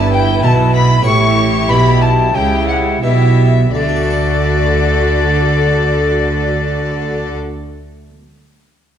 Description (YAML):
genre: classical, baroque-style concerto movement with solo episodes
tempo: 84-100 BPM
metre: 4/4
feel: straight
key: D major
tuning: A4 = 439 Hz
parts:
  - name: rich chamber violin section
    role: melody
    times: 0.0-7.4 s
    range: D5 to C#6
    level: -22 LUFS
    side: left 6 dB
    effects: none
  - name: bright chamber violin section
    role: second line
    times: 0.0-7.3 s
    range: G4 to B4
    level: -21 LUFS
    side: left 3 dB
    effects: none
  - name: harpsichord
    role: accompaniment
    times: 0.0-8.2 s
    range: G2 to F#5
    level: -23 LUFS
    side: equal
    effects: none
  - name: rich chamber viola section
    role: accompaniment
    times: 0.0-7.4 s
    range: E4 to F#4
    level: -22 LUFS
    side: equal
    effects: none
  - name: clear chamber cello section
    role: bass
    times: 0.0-7.4 s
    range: G2 to D3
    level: -18 LUFS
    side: right 2 dB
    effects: none
  - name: rich chamber double bass section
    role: bass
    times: 0.0-7.4 s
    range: G1 to D2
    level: -16 LUFS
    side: right 2 dB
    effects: none
  - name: alto recorder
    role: melody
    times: 0.1-7.4 s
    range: D5 to C#6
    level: -18 LUFS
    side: left 2 dB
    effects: none
room: wet recital hall reverb, RT60 1.5 s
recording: dark, warm production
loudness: -11 LUFS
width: side -9 dB against mid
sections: 0.0-3.7 A section; 3.7-6.6 B section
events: slowing down 0.0-3.7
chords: 0.0 Em7/G; 1.1 A7; 3.7 D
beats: 0.44 | 1.06 1.69 2.35 3.04 | 3.75 4.46 5.18 5.89